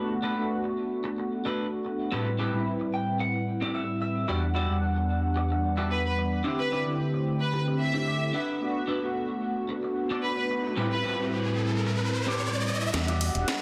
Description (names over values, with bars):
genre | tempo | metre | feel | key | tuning
nu-disco, nu disco | 111 BPM | 4/4 | straight | E minor | A4 = 440 Hz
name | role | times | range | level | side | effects
mellow synth brass | accompaniment | 0.0-13.6 s | E2 to F#5 | -30 LUFS | equal | chorus
electric guitar at the edge of break-up | riff | 0.0-13.4 s | C4 to G5 | -36 LUFS | equal | lush chorus, low-pass filter, tape echo
rich studio violin section | melody | 5.9-11.1 s | B4 to E5 | -34 LUFS | equal | tape echo
riser | sound effects | 10.0-13.6 s | none | -36 LUFS | equal | none
fat analog bass | bass | 12.9-13.5 s | E1 to E2 | -30 LUFS | equal | none
house drum kit | drums | 12.9-13.6 s | hi-hat, snare drum | -32 LUFS | equal | overdrive
room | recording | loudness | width
moderate lush hall reverb, RT60 2.1 s | dense, heavily limited modern master | -28 LUFS | mono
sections
0.0-12.9 A section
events
clean electric guitar fill 2.7-4.3, 7.8-8.6; riser 10.0-12.9, 12.9-13.6; drum fill 12.9-13.6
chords
0.0 Bm7; 2.1 Am9; 4.3 Em9; 6.5 D9sus4; 8.3 Bm7; 10.8 Am9; 12.9 Em9